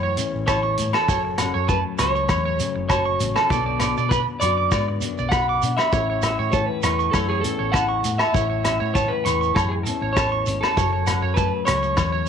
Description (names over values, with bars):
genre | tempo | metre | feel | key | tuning
highlife guitar band | 99 BPM | 4/4 | straight | A major | A4 = 435 Hz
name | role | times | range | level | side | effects
electric guitar through a small old amp | melody | 0.0-12.3 s | G#4 to F#5 | -25 LUFS | left 1 dB | none
nylon-string guitar | accompaniment | 0.0-12.3 s | E2 to F#4 | -29 LUFS | left 10 dB | none
electric guitar at the edge of break-up | arpeggios | 0.0-12.3 s | C#5 to D6 | -25 LUFS | right 10 dB | slapback echo
hollow-body short-scale fingered electric bass | bass | 0.0-12.3 s | F#1 to B2 | -26 LUFS | equal | none
vintage drum kit | drums | 0.2-12.1 s | hi-hat, kick drum, rim click | -26 LUFS | equal | none
shekere | percussion | 0.2-12.3 s | none | -31 LUFS | right 6 dB | none
agogo bells | percussion | 0.5-12.1 s | none | -29 LUFS | left 12 dB | none
room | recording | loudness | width
light reverb, studio reverb | 1960s-style stereo with parts hard left and right | -19 LUFS | side -7 dB against mid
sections
0.0-12.3 A section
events
none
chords
0.0 A; 1.1 F#m; 3.5 Bm; 5.9 A; 10.8 F#m